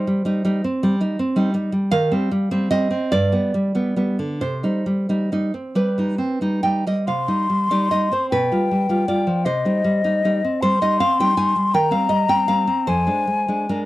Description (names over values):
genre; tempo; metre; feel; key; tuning
romantic duo for flute and classical guitar; 44-56 BPM (dotted quarters); 6/8; rubato; C minor; A4 = 439 Hz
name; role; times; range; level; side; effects
nylon-string guitar; accompaniment; 0.0-13.9 s; F2 to Ab5; -19 LUFS; right 1 dB; none
hollow concert flute; melody; 7.1-13.8 s; Eb5 to C6; -20 LUFS; left 3 dB; none
room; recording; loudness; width
little or no reverb; dry, close 1970s-style studio recording; -18 LUFS; side -16 dB against mid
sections
0.0-7.1 A section; 7.1-13.9 A section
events
none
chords
0.0 Cm; 1.9 Cm/Eb; 3.1 G; 4.4 Cm; 8.3 G7/B; 9.5 Cm; 11.7 Cm/Eb; 12.9 Dm7b5/F